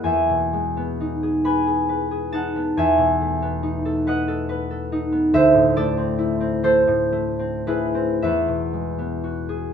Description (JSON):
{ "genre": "classical, solo harp piece", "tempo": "35-48 BPM (dotted quarters)", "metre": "6/8", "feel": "rubato", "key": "E major", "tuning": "A4 = 440 Hz", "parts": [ { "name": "concert harp", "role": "solo", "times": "0.0-9.7 s", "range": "D2 to B5", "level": "-19 LUFS", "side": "equal", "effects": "none" } ], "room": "moderate stone room reverb, RT60 0.9 s", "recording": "none", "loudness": "-19 LUFS", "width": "side -7 dB against mid", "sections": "0.0-9.7 A section", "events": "none", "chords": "0.0 Emaj7; 5.3 D9; 8.2 Eadd9" }